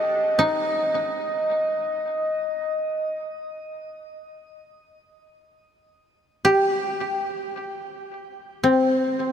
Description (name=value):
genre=world meditative, free-time meditation music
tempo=free time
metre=none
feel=none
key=unclear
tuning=A4 = 440 Hz
part: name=koto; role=melody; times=0.0-9.3 s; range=C4 to A4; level=-22 LUFS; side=equal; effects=shimmer reverb, tape echo
part: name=glass harmonica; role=texture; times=0.0-2.7 s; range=Eb5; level=-24 LUFS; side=equal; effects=shimmer reverb
room=wet huge ambient reverb, RT60 4.6 s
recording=none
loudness=-21 LUFS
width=side -8 dB against mid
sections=0.0-9.3 A section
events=none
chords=none